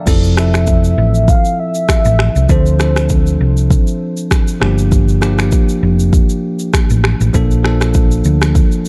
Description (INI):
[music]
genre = afrobeats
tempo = 99 BPM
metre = 4/4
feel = swing 55% on 16ths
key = unclear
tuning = A4 = 439 Hz
[part]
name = bell-like tine electric piano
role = accompaniment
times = 0.0-8.9 s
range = F3 to D5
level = -20 LUFS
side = equal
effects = none
[part]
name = hollow-body short-scale fingered electric bass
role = bass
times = 0.1-8.6 s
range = F1 to D2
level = -15 LUFS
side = equal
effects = none
[part]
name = afro-pop drum kit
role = drums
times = 0.1-8.9 s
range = crash cymbal, finger snaps, kick drum, rim click, shaker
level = -16 LUFS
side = equal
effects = none
[part]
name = warm velvety synth lead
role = melody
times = 0.4-3.4 s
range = C5 to F5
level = -22 LUFS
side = equal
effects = chorus, tape echo
[sound]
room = little or no reverb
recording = dark, warm production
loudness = -13 LUFS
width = mono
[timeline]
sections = 0.1-8.9 A section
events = none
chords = 0.1 Fmaj7; 2.5 Dm7; 4.6 Gm7; 7.3 Bbmaj7